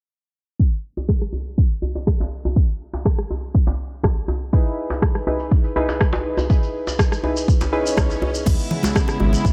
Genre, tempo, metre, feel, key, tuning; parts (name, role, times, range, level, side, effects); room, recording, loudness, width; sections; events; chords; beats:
afro house; 122 BPM; 4/4; straight; A4 = 441 Hz
electronic kick drum; drums; 0.6-9.5 s; -20 LUFS; equal; overdrive
djembe; percussion; 1.0-9.3 s; -28 LUFS; equal
house drum kit; drums; 1.1-9.2 s; crash cymbal, rim click; -29 LUFS; equal; overdrive
warm analog keys; stabs; 4.5-8.4 s; D#4 to B4; -27 LUFS; equal; chorus, sidechain pumping, tape echo
shekere; percussion; 4.5-9.5 s; -36 LUFS; equal
swell; sound effects; 7.6-8.5 s; -34 LUFS; equal
dark studio string section; sustained chords; 8.5-9.5 s; C#3 to E4; -26 LUFS; equal; sidechain pumping
warm sub bass; bass; 8.5-9.5 s; G#1 to C#2; -22 LUFS; equal; sidechain pumping
congas; percussion; 8.5-9.4 s; -27 LUFS; equal
light reverb; low-pass filter; -20 LUFS; mono
0.6-8.5 A section; 8.5-9.5 B section
filter sweep 0.6-8.5; swell 7.6-8.5
0.6 Emaj7/D#; 8.5 C#m7
| 0.60 1.09 1.58 2.07 | 2.56 3.06 3.55 4.04 | 4.53 5.02 5.51 6.01 | 6.50 6.99 7.48 7.97 | 8.46 8.96 9.45